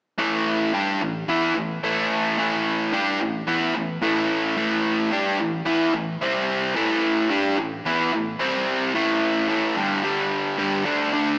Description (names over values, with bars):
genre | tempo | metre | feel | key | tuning
rock | 110 BPM | 4/4 | straight | unclear | A4 = 440 Hz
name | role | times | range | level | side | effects
overdriven electric guitar | solo | 0.2-11.4 s | G2 to G4 | -20 LUFS | equal | digital delay
room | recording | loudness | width
wet studio reverb, RT60 0.7 s | small speaker sound | -20 LUFS | side -23 dB against mid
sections
0.2-8.9 A section; 8.9-11.4 B section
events
none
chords
0.2 A5; 6.2 C5; 6.8 A5; 8.4 C5; 8.9 A5; 9.8 G5; 10.9 D5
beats
| 0.19 0.74 1.29 1.84 | 2.38 2.93 3.48 4.03 | 4.58 5.12 5.67 6.21 | 6.76 7.31 7.85 8.40 | 8.95 9.49 10.04 10.59 | 11.13